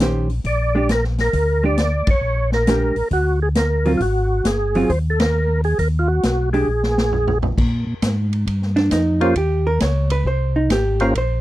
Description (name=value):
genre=soul jazz organ trio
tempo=134 BPM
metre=4/4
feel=swing 66% on 8ths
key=unclear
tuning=A4 = 440 Hz
part: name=vintage hollow-body jazz guitar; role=accompaniment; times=0.0-11.4 s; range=Eb3 to Db5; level=-20 LUFS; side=right 2 dB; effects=none
part: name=mellow tonewheel organ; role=bass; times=0.0-11.4 s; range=G1 to Bb2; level=-20 LUFS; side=equal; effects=chorus vibrato, slow rotary speaker
part: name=swinging big-band drum kit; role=drums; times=0.0-11.3 s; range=crash cymbal, hi-hat, kick drum, ride cymbal, snare drum, toms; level=-22 LUFS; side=equal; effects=none
part: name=percussive tonewheel organ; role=melody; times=0.5-11.1 s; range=Bb3 to D5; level=-20 LUFS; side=equal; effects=slow rotary speaker, overdrive, chorus vibrato
room=light reverb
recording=dry, close 1970s-style studio recording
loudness=-16 LUFS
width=side -15 dB against mid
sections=0.0-7.6 A section; 7.6-11.4 B section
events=band accent 2.0, 5.1; drum fill 6.7-7.6; hollow-body jazz guitar solo 7.6-11.4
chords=0.4 Bb13; 4.0 Ab7sus2; 5.8 Eb; 6.7 Absus2/Bb; 7.6 Eb13